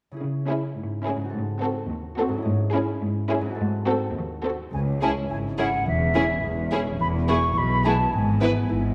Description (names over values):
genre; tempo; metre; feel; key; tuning
cinematic, playful, whimsical film cue; 106 BPM; 2/4; straight; C# minor; A4 = 440 Hz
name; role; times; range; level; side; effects
concert harp; arpeggios; 0.1-8.9 s; G#2 to A4; -34 LUFS; equal; none
warm studio cello section; bass; 0.2-8.9 s; C#2 to C#3; -30 LUFS; equal; none
warm studio violin section; melody; 0.5-8.5 s; G#4 to B4; -33 LUFS; equal; none
warm studio violin section; second line; 0.5-8.5 s; E4 to F#4; -34 LUFS; equal; none
dark studio viola section; accompaniment; 0.5-8.5 s; B3 to C#4; -33 LUFS; equal; none
mellow hollow silver concert flute; second line; 4.7-8.9 s; E5 to C#6; -28 LUFS; equal; none
warm studio double bass section; bass; 4.7-8.9 s; E1 to C#2; -31 LUFS; equal; none
room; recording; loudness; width
moderate scoring stage reverb, RT60 1.7 s; dark, warm production; -24 LUFS; mono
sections
0.2-4.7 A section; 4.7-8.9 B section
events
none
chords
0.2 C#m; 1.4 G#7b9; 2.5 C#m/G#; 3.6 G#7b9; 4.7 C#m; 5.9 C#m/E; 7.0 E; 8.1 E/G#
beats
| 0.22 0.78 | 1.35 1.91 | 2.47 3.03 | 3.60 4.16 | 4.73 5.30 | 5.87 6.43 | 7.00 7.57 | 8.13 8.70